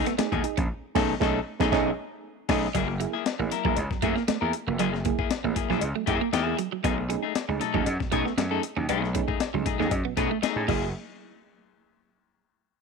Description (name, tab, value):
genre	funk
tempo	117 BPM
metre	4/4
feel	straight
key	unclear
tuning	A4 = 439 Hz
part	clean electric guitar	accompaniment	0.0-10.8 s	A3 to A#4	-30 LUFS	left 14 dB	none
part	reed electric piano	stabs	0.0-10.9 s	B2 to G#4	-31 LUFS	right 15 dB	none
part	electric guitar at the edge of break-up	riff	0.1-10.8 s	F#3 to C#4	-32 LUFS	right 16 dB	none
part	breakbeat sampler-style drum kit	drums	0.1-10.8 s	crash cymbal, hi-hat, kick drum, snare drum	-30 LUFS	left 3 dB	none
part	gritty slap bass	bass	0.2-10.9 s	E#1 to B2	-30 LUFS	equal	overdrive
part	cowbell	percussion	0.2-10.9 s	none	-37 LUFS	left 12 dB	none
room	light reverb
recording	1960s-style stereo with parts hard left and right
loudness	-24 LUFS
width	side -4 dB against mid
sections	0.0-2.7 A section; 2.7-10.9 B section; 10.9-12.8 C section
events	band accent 0.7-2.7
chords	0.0 B13; 2.7 F#9; 6.8 B13; 10.7 F#9; 10.9 N.C.